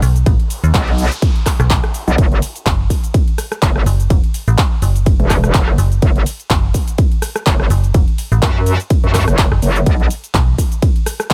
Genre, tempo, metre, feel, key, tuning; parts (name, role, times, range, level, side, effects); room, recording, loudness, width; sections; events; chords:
bass house; 125 BPM; 4/4; swing 56% on 16ths; F# dorian; A4 = 443 Hz
metallic FM bass; bass; 0.0-10.6 s; E1 to D#2; -16 LUFS; equal; tube saturation, sidechain pumping
big-room dance drum kit; drums; 0.0-11.3 s; cabasa, handclaps, hi-hat, ride cymbal, rim click; -24 LUFS; equal
electronic kick drum; drums; 0.3-11.3 s; -16 LUFS; equal
noise sweep; sound effects; 0.4-2.2 s; -34 LUFS; equal
metallic wobble bass; bass; 0.7-11.3 s; E1 to F#2; -18 LUFS; equal; chorus, overdrive, sidechain pumping
little or no reverb; -15 LUFS; mono
0.0-11.3 A section
noise sweep 0.4-2.2